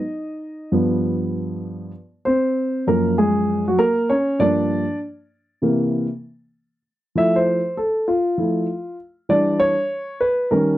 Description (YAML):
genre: hip hop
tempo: 98 BPM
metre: 4/4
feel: swing 63% on 16ths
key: unclear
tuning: A4 = 439 Hz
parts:
  - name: dark concert grand piano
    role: solo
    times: 0.0-10.8 s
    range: Gb2 to E5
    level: -18 LUFS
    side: equal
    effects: none
room: light reverb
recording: dry, close 1970s-style studio recording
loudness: -18 LUFS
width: side -14 dB against mid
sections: 0.0-6.8 A section; 6.8-10.8 B section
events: grand piano solo 0.0-6.8, 6.8-10.8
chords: 0.0 N.C.; 0.7 G7; 1.9 Gbmaj7; 4.4 Gm7; 5.6 C7; 6.8 Fmaj7; 9.3 Em7